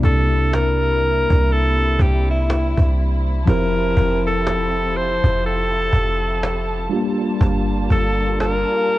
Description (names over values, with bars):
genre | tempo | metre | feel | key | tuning
contemporary R&B | 61 BPM | 4/4 | swing 58% on 16ths | unclear | A4 = 441 Hz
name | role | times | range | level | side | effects
bright alto saxophone | melody | 0.0-9.0 s | E4 to C5 | -21 LUFS | left 1 dB | none
mellow tine electric piano | accompaniment | 0.0-9.0 s | C3 to C5 | -24 LUFS | equal | medium stereo tremolo
dark studio string section | sustained chords | 0.0-9.0 s | C3 to A5 | -28 LUFS | right 1 dB | none
clean 808-style bass | bass | 0.0-8.6 s | F1 to C2 | -19 LUFS | equal | none
cajon | drums | 0.0-9.0 s | none | -23 LUFS | equal | vintage 12-bit sampler grit
room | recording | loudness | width
small room ambience | worn, warbling old tape, cassette tape, warbly pitch drift | -16 LUFS | side -16 dB against mid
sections
0.0-9.0 A section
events
none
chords
0.0 C7; 3.5 Fmaj7; 6.9 Gm7